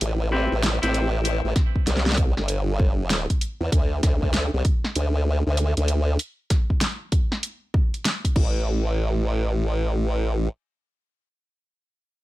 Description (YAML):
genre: glitch hop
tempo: 97 BPM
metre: 4/4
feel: swing 64% on 16ths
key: A minor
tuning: A4 = 440 Hz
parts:
  - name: formant-sweep wobble bass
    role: bass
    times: 0.0-10.5 s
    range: G1 to E2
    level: -22 LUFS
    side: equal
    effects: chorus
  - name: pop drum kit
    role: drums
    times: 0.0-8.5 s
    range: crash cymbal, hi-hat, snare drum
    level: -26 LUFS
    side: equal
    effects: none
  - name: semi-hollow electric guitar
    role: stabs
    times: 0.3-1.1 s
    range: C4 to B4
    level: -28 LUFS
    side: left 2 dB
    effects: spring reverb, sidechain pumping, ping-pong delay
  - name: electronic kick drum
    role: drums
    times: 1.6-8.5 s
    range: none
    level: -21 LUFS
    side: equal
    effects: none
room: little or no reverb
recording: none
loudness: -21 LUFS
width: side -17 dB against mid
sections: 0.0-8.7 A section; 8.7-11.1 B section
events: drop 0.0-8.7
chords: 0.0 Am7; 3.7 N.C.